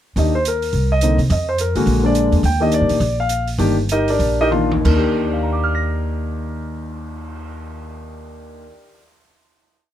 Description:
jazz piano trio; 180-212 BPM; 4/4; swing 61% on 8ths; Eb major; A4 = 440 Hz
dark concert grand piano; melody; 0.2-9.3 s; Eb2 to Bb6; -19 LUFS; left 1 dB
upright bass; bass; 0.2-8.7 s; G1 to C3; -20 LUFS; right 1 dB
open jazz drum kit; drums; 0.2-7.4 s; crash cymbal, cymbal swell, hi-hat, kick drum, toms; -30 LUFS; right 4 dB
little or no reverb; close, detailed microphones; -15 LUFS; side -11 dB against mid
0.2-4.8 A section; 4.8-7.5 final chord
slowing down 2.4-4.8; drum fill 4.5-4.8
0.2 Ebmaj7; 0.7 Cm9; 1.3 N.C.; 1.9 Bbaug7; 2.4 Ebmaj7

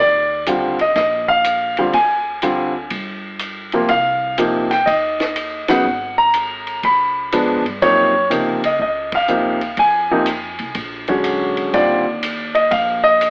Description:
jazz piano trio; 122 BPM; 4/4; swing 67% on 8ths; Eb major; A4 = 441 Hz
warm concert grand piano; melody; 0.0-13.3 s; C3 to Cb6; -15 LUFS; equal
upright bass; bass; 0.0-13.3 s; G1 to Db3; -32 LUFS; equal
compact cocktail drum kit; drums; 0.5-13.3 s; hi-hat, kick drum, ride cymbal, snare drum; -26 LUFS; equal
moderate large studio reverb, RT60 0.9 s; telephone sound; -15 LUFS; side -37 dB against mid
0.0-13.3 A section
band accent 5.6, 9.0
0.0 Ebmaj9; 1.9 Dm7b5; 2.9 G7(no3); 3.9 Cm; 5.9 Absus2; 6.8 Db7b9; 7.8 Gbmaj7; 9.8 Fm; 10.8 Bb7alt; 11.7 Ebmaj7sus2

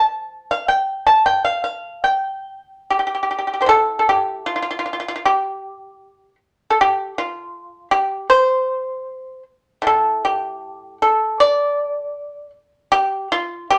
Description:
chinese traditional, Chinese solo plucked strings; 77 BPM; 2/4; rubato; G shang mode; A4 = 436 Hz
pipa; solo; 0.0-13.8 s; A2 to A5; -19 LUFS; equal
wet studio reverb, RT60 0.6 s; -19 LUFS; mono
0.0-3.7 A section; 3.7-13.8 B section

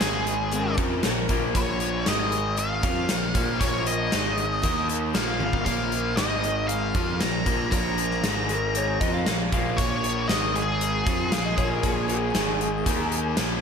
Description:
classic rock; 117 BPM; 4/4; straight; Bb minor; A4 = 441 Hz
octave-fuzz lead guitar; melody; 0.0-13.3 s; Ab4 to Bb5; -29 LUFS; left 1 dB; wah, distortion, slapback echo, tape echo
picked twelve-string acoustic guitar; accompaniment; 0.0-13.6 s; Bb2 to Eb5; -35 LUFS; left 6 dB; slapback echo
cranked stack guitar; riff; 0.0-13.6 s; Ab2 to F4; -31 LUFS; left 9 dB; overdrive, slapback echo
raw garage guitar; riff; 0.0-13.6 s; Ab2 to F4; -31 LUFS; right 10 dB; overdrive
fuzz picked electric bass; bass; 0.0-13.6 s; Ab1 to F2; -31 LUFS; right 1 dB; overdrive
gated 80s drum kit; drums; 0.0-13.5 s; hi-hat, kick drum, snare drum, toms; -27 LUFS; equal
electric slide guitar; second line; 0.5-1.4, 8.5-13.1 s; Db4 to F5; -32 LUFS; left 2 dB; slapback echo
moderate lush hall reverb, RT60 1.9 s, studio ambience; big arena sound; -22 LUFS; side -6 dB against mid
0.0-13.6 A section
drum fill 5.4
0.0 Ab5; 0.8 Bbm; 2.1 Ab5; 2.8 Bbm; 4.1 Ab5; 4.6 Eb5; 5.2 Bbm; 6.2 Ab5; 7.0 Bbm; 8.2 Ab5; 9.0 Bbm; 10.3 Ab5; 11.1 Bbm; 12.3 Ab5; 12.9 Eb5

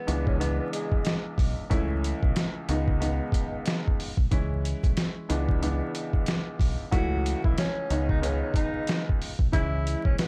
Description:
hip hop, boom-bap hip-hop; 92 BPM; 4/4; swing 61% on 16ths; A4 = 440 Hz
breathy tenor saxophone; melody; 0.0-1.2, 6.9-10.3 s; G#3 to F#4; -35 LUFS; equal; high-pass filter, low-pass filter
warm baby grand piano; accompaniment; 0.0-10.3 s; C#2 to E4; -34 LUFS; equal; cassette tape, high-pass filter, low-pass filter
deep dub fingered electric bass; bass; 0.1-10.2 s; B1 to C#2; -31 LUFS; equal
trip hop sampler-style drum kit; drums; 0.1-10.3 s; hi-hat, kick drum, snare drum; -29 LUFS; equal
studio ambience; dark, warm production, vinyl crackle; -27 LUFS; mono
0.0-10.3 A section
0.1 E7/C#; 1.7 A/C#; 2.7 G#m/C#; 4.3 C#m; 5.3 E7/C#; 6.9 A/C#; 7.9 G#m/C#; 9.5 C#m

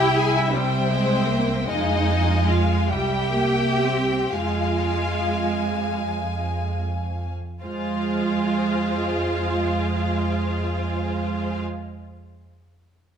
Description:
classical, slow romantic movement for string orchestra; 34-57 BPM (dotted quarters); 6/8; rubato; F minor; A4 = 440 Hz
rich symphonic violin section; melody; 0.0-11.6 s; C5 to Ab5; -30 LUFS; left 6 dB
warm studio violin section; second line; 0.0-11.6 s; Ab4 to Ab5; -29 LUFS; left 3 dB
rich symphonic viola section; accompaniment; 0.0-11.6 s; G3 to F4; -26 LUFS; right 3 dB
clear chamber double bass section; bass; 0.0-11.6 s; C2 to F2; -26 LUFS; right 2 dB
rich symphonic cello section; bass; 0.0-11.6 s; C4 to Ab4; -28 LUFS; right 1 dB
moderate scoring stage reverb, RT60 1.7 s; -20 LUFS; side -8 dB against mid
0.0-7.6 A section; 7.6-10.9 B section
slowing down 0.5-7.6
0.0 C; 1.7 Fm; 2.9 C; 4.3 Fm

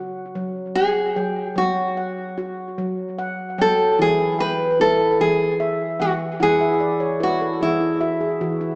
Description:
world meditative, meditative tuned percussion; 50 BPM (dotted quarters); 6/8; straight; A4 = 440 Hz
handpan; arpeggios; 0.0-8.8 s; E3 to G5; -26 LUFS; equal; tape echo
nylon-string guitar; melody; 0.8-8.5 s; E4 to B4; -21 LUFS; equal; tape echo
wet echo chamber reverb, RT60 1.6 s, small room ambience; small speaker sound; -21 LUFS; mono
0.0-8.8 A section
handpan fill 6.4-8.8
0.0 F#sus2; 4.0 E

